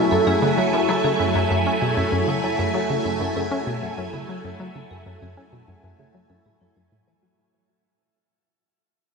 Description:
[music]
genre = ambient, sequencer-driven space music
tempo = 97 BPM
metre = 4/4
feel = straight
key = F# minor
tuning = A4 = 440 Hz
[part]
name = phased string machine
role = sustained chords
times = 0.0-7.4 s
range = F#3 to G#5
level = -22 LUFS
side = equal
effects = ensemble chorus, phaser, shimmer reverb
[part]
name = analog pluck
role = riff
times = 0.0-7.3 s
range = F#2 to C#4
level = -25 LUFS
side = left 1 dB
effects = chorus, ping-pong delay, shimmer reverb
[part]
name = pulsing gated texture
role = texture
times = 0.0-7.4 s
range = E5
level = -29 LUFS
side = right 6 dB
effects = chorus, built-in reverb, shimmer reverb
[part]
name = vibraphone with hard mallets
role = arpeggios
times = 0.1-7.4 s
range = E4 to C#5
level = -30 LUFS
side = right 1 dB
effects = auto-pan, ping-pong delay, shimmer reverb
[sound]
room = wet lush hall reverb, RT60 2.9 s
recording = cassette tape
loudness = -19 LUFS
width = side -4 dB against mid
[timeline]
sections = 0.0-7.4 A section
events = fade-out on vibraphone 0.0-7.4; fade-out 0.0-7.4; filter sweep on synth arpeggio sound 0.0-7.4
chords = 0.0 F#m9

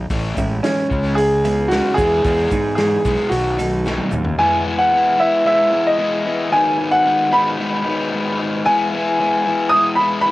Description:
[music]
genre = indie rock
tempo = 112 BPM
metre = 4/4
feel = straight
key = E major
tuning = A4 = 440 Hz
[part]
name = raw garage guitar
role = riff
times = 0.0-10.3 s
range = G#2 to E4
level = -22 LUFS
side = left 3 dB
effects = overdrive, cassette tape
[part]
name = fuzz fingered electric bass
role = bass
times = 0.0-4.3 s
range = A1 to G#2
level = -22 LUFS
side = equal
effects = overdrive
[part]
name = vintage drum kit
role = drums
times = 0.1-4.4 s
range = hi-hat, kick drum, snare drum, toms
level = -26 LUFS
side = equal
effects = cassette tape
[part]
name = tube shaker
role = percussion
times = 0.1-4.2 s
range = none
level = -46 LUFS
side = right 6 dB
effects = none
[part]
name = twelve-string electric guitar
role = riff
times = 0.4-4.2 s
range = B2 to E4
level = -28 LUFS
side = right 4 dB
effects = wide subtle chorus, cassette tape
[part]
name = clear upright piano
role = melody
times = 0.6-10.3 s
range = C#4 to D#6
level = -16 LUFS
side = equal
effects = cassette tape, plate reverb
[part]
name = overdriven combo organ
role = sustained chords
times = 4.4-10.3 s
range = E4 to G#5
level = -30 LUFS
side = equal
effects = cassette tape
[sound]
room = moderate studio reverb, RT60 0.6 s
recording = home recording on cassette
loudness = -15 LUFS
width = side -18 dB against mid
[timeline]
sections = 0.0-4.4 A section; 4.4-10.3 B section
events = drum fill 3.9-4.4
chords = 0.1 Amaj7; 0.9 C#m7; 2.0 Emaj7; 3.3 B7; 4.4 Emaj7; 6.5 G#m7; 8.7 E

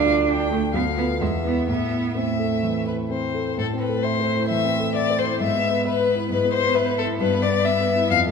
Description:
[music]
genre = quick classical-period movement for piano trio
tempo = 131 BPM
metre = 4/4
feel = straight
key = A minor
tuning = A4 = 441 Hz
[part]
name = rich violin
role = melody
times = 0.0-8.2 s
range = A4 to G5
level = -24 LUFS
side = left 7 dB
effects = none
[part]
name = warm cello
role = second line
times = 0.0-8.3 s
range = G#3 to D4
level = -25 LUFS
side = right 6 dB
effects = none
[part]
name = warm concert grand piano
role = accompaniment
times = 0.0-8.3 s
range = D2 to E5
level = -24 LUFS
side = left 2 dB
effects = none
[sound]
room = wet scoring stage reverb, RT60 2.0 s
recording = minimal, uncompressed stereo recording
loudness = -20 LUFS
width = side -5 dB against mid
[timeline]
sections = 0.0-3.6 A section; 3.6-8.3 B section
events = none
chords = 0.0 Dm; 0.7 Bdim/D; 1.2 E5; 1.7 Am; 5.4 E/G#; 7.2 Em/G

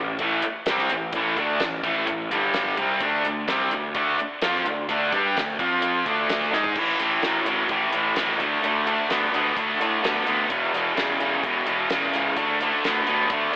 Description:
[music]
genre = classic rock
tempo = 128 BPM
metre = 4/4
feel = straight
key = A major from 6.8 s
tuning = A4 = 443 Hz
[part]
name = distorted electric guitar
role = riff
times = 0.0-13.6 s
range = E2 to G#4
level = -21 LUFS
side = equal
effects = overdrive, slapback echo
[part]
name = fuzz picked electric bass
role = bass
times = 0.0-13.5 s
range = E1 to A2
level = -31 LUFS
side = equal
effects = overdrive
[part]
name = damped 70s drum kit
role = drums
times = 0.2-13.6 s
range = crash cymbal, hi-hat, kick drum, snare drum, toms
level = -31 LUFS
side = equal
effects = none
[sound]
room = wet lush hall reverb, RT60 1.8 s, small room reverb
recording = big arena sound, telephone sound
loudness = -20 LUFS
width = side -21 dB against mid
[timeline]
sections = 0.0-6.8 A section; 6.8-13.6 B section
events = drum fill 6.5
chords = 0.0 A5; 2.3 G5; 2.8 C5; 3.0 D5; 5.6 F5; 6.1 D5; 6.8 A5; 8.4 D5; 10.5 E5; 12.4 D5

